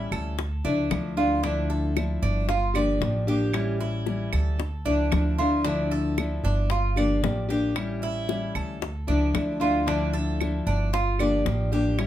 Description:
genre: latin, Cuban son and guajira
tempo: 114 BPM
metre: 4/4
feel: straight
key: D harmonic minor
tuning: A4 = 440 Hz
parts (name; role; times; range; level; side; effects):
- nylon-string guitar; accompaniment; 0.0-12.1 s; D3 to G4; -27 LUFS; left 3 dB; none
- Cuban tres; arpeggios; 0.0-12.1 s; D4 to D5; -30 LUFS; right 3 dB; slapback echo
- upright bass; bass; 0.0-12.1 s; G1 to D2; -27 LUFS; right 1 dB; none
- bongos; percussion; 0.1-12.1 s; none; -32 LUFS; left 7 dB; none
- claves; percussion; 0.1-12.1 s; none; -35 LUFS; right 7 dB; none
room: moderate studio ambience, RT60 0.5 s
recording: none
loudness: -23 LUFS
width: side -12 dB against mid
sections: 0.0-12.1 A section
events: none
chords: 0.4 Dmadd9; 2.5 Gm7; 3.5 A7; 4.6 Dmadd9; 6.7 Gm7; 7.8 A7; 8.8 Dmadd9; 10.9 Gm7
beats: 0.38 0.91 | 1.44 1.97 2.49 3.02 | 3.55 4.07 4.60 5.13 | 5.66 6.18 6.71 7.24 | 7.76 8.29 8.82 9.35 | 9.87 10.40 10.93 11.46 | 11.98

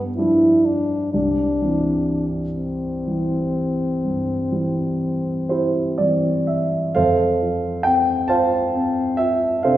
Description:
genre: classical, romantic duo for French horn and grand piano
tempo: 40-45 BPM (dotted quarters)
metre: 12/8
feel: rubato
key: C major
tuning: A4 = 439 Hz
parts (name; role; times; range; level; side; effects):
- mellow French horn; melody; 0.0-9.8 s; C4 to E4; -21 LUFS; left 1 dB; none
- warm concert grand piano; accompaniment; 0.0-9.8 s; C2 to A5; -19 LUFS; right 1 dB; none
room: wet recital hall reverb, RT60 1.6 s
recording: recorded in a church or concert hall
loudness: -18 LUFS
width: side -13 dB against mid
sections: 0.0-7.0 A section; 7.0-9.8 B section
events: none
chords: 0.0 G5; 1.1 C; 7.0 F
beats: | 1.14 2.59 4.04 5.51 | 6.96 8.30 9.65

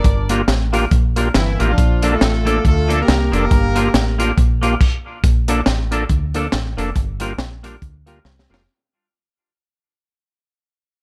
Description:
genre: ska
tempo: 139 BPM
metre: 4/4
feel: swing 58% on 8ths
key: unclear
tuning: A4 = 441 Hz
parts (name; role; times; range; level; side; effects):
- warm horn section; melody; 0.0-4.2 s; E3 to D5; -24 LUFS; equal; none
- deep dub fingered electric bass; bass; 0.0-8.7 s; F1 to D2; -21 LUFS; equal; none
- crunchy breakbeat drum kit; drums; 0.0-8.6 s; crash cymbal, hi-hat, kick drum, snare drum; -20 LUFS; equal; none
- clean electric guitar; accompaniment; 0.3-8.6 s; F3 to Bb4; -26 LUFS; equal; analog delay
- overdriven tonewheel organ; stabs; 0.3-8.6 s; Bb3 to A4; -26 LUFS; equal; chorus vibrato, slow rotary speaker
room: small room reverb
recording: none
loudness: -17 LUFS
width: mono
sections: 0.0-5.2 A section; 5.2-8.7 B section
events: stop 4.8-5.2; fade-out 5.2-8.7; drum fill 8.3-8.7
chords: 0.0 Gm7; 1.8 Bbmaj7; 3.5 Gm7; 5.2 Bbmaj7; 7.0 Gm7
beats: | 0.04 0.47 0.91 1.34 | 1.78 2.21 2.64 3.08 | 3.51 3.94 4.37 4.80 | 5.24 5.67 6.10 6.53 | 6.96 7.39 7.82 8.25

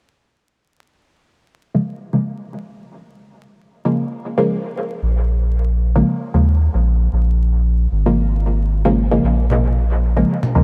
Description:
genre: dub techno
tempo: 114 BPM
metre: 4/4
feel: swing 54% on 16ths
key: Bb minor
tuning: A4 = 438 Hz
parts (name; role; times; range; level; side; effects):
- filtered dub chord stab; stabs; 1.7-10.6 s; Db3 to Bb3; -21 LUFS; equal; chorus, phaser, dub echo
- round analog bass; bass; 5.0-10.6 s; Ab1 to Eb2; -18 LUFS; equal; none
- congas; percussion; 9.5-10.5 s; none; -24 LUFS; equal; dub echo
room: light reverb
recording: dark, warm production, vinyl crackle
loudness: -18 LUFS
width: mono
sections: 0.8-9.2 A section; 9.2-10.6 B section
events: filter sweep on synth stab 0.8-9.2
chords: 0.8 Bbm7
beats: | 0.81 1.34 1.87 2.39 | 2.92 3.45 3.97 4.50 | 5.03 5.55 6.08 6.61 | 7.13 7.66 8.18 8.71 | 9.24 9.76 10.29

